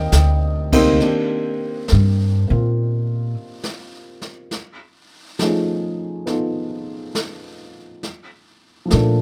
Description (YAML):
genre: jazz ballad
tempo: 68 BPM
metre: 4/4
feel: swing 69% on 8ths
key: unclear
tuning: A4 = 440 Hz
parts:
  - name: warm baby grand piano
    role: accompaniment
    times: 0.0-9.2 s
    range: C3 to G5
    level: -23 LUFS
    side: equal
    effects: none
  - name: upright bass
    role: bass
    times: 0.0-3.3, 8.9-9.2 s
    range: D2 to Bb2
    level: -18 LUFS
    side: equal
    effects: none
  - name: jazz brush drum kit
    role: drums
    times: 0.1-9.2 s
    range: brushed snare drum, crash cymbal, hi-hat, kick drum, snare drum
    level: -28 LUFS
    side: equal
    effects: none
room: light reverb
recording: none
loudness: -19 LUFS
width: mono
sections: 0.0-1.0 A section; 1.0-9.2 A section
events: upright bass solo 1.0-9.2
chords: 0.0 Cm9; 4.5 F7alt; 8.0 Bbmaj7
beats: 0.12 | 1.00 1.88 2.76 3.64 | 4.52 5.40 6.28 7.16 | 8.03 8.91